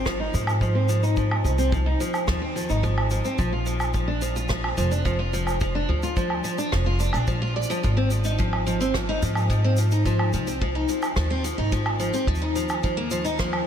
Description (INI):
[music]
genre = folktronica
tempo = 108 BPM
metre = 4/4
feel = straight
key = Ab lydian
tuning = A4 = 442 Hz
[part]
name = picked steel-string acoustic guitar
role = arpeggios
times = 0.0-13.7 s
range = F3 to D5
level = -26 LUFS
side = equal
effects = wide subtle chorus, low-pass filter, ping-pong delay
[part]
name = upright bass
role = bass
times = 0.0-13.6 s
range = F1 to Ab2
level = -25 LUFS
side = equal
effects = none
[part]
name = kick drum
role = drums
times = 0.1-13.5 s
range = none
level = -28 LUFS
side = equal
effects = none
[part]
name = rim click, shaker and woodblock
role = drums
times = 0.1-13.6 s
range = none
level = -32 LUFS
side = right 2 dB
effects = none
[sound]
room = moderate huge ambient reverb, RT60 7.9 s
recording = dreamy mix soaked in reverb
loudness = -21 LUFS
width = side -9 dB against mid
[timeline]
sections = 0.0-13.7 A section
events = none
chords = 0.0 Ab6; 3.4 Bb; 7.8 Ab6; 12.3 Ebsus2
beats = 0.06 0.61 | 1.17 1.72 2.28 2.83 | 3.39 3.95 4.50 5.06 | 5.61 6.17 6.72 7.28 | 7.83 8.39 8.95 9.50 | 10.06 10.61 11.17 11.72 | 12.28 12.84 13.39